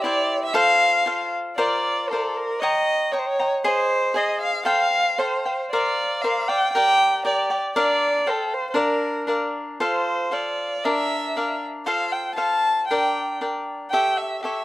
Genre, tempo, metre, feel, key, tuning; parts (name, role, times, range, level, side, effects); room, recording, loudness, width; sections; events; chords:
mexican folk, mariachi; 117 BPM; 2/4; straight; Bb major, F major from 9.8 s; A4 = 437 Hz
dark violin; melody; 0.0-14.6 s; A4 to A5; -22 LUFS; equal
cavaquinho; accompaniment; 0.0-14.6 s; D4 to Bb5; -23 LUFS; left 1 dB
little or no reverb; recorded outdoors, with no room sound; -20 LUFS; side -16 dB against mid
0.0-1.6 A section; 1.6-9.8 B section; 9.8-14.6 A section
0.0 C; 0.5 F; 1.6 Bbadd9; 2.6 Eb7; 3.6 Ab; 4.7 Fadd9; 5.7 Bbadd9; 6.7 Gm; 7.7 Bb; 8.3 Fadd9; 8.8 Bb; 9.8 F; 10.8 Bb; 11.9 F; 12.9 Gm; 13.9 A7